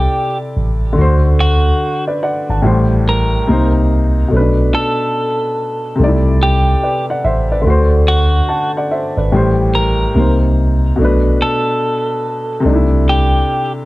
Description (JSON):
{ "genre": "lo-fi hip hop", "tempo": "72 BPM", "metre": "4/4", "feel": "swing 63% on 16ths", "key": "unclear", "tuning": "A4 = 441 Hz", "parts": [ { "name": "clean electric guitar", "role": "melody", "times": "0.0-13.7 s", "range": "F#4 to Bb4", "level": "-18 LUFS", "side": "right 1 dB", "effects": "low-pass filter" }, { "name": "warm upright piano", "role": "accompaniment", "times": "0.0-13.9 s", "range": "A2 to A5", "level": "-16 LUFS", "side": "left 1 dB", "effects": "cassette tape, low-pass filter" }, { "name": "mellow tine electric piano", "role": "bass", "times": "0.0-13.4 s", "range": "G#1 to D2", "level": "-13 LUFS", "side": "equal", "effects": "medium stereo tremolo" } ], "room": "light reverb", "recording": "none", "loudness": "-12 LUFS", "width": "side -18 dB against mid", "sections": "0.0-13.9 A section", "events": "none", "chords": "0.0 C69; 1.0 D7; 2.6 Am7; 3.5 Cm7; 4.3 Bm7; 6.0 C69; 7.6 D7; 9.3 Am7; 10.1 Cm7; 11.0 Bm7; 12.6 C69" }